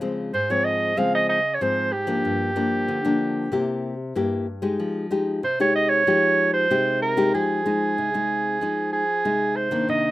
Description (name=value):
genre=samba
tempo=94 BPM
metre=4/4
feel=straight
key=F minor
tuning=A4 = 440 Hz
part: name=nylon-string guitar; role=accompaniment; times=0.0-10.1 s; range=G2 to G4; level=-24 LUFS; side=left 2 dB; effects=none
part: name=breathy soprano saxophone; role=melody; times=0.3-10.1 s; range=G4 to F5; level=-21 LUFS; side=right 2 dB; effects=none
room=light reverb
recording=rough home demo mix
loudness=-20 LUFS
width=side -16 dB against mid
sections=0.0-9.9 A section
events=none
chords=0.0 Dbmaj7; 2.2 Gm7; 3.5 C7; 4.8 Fm9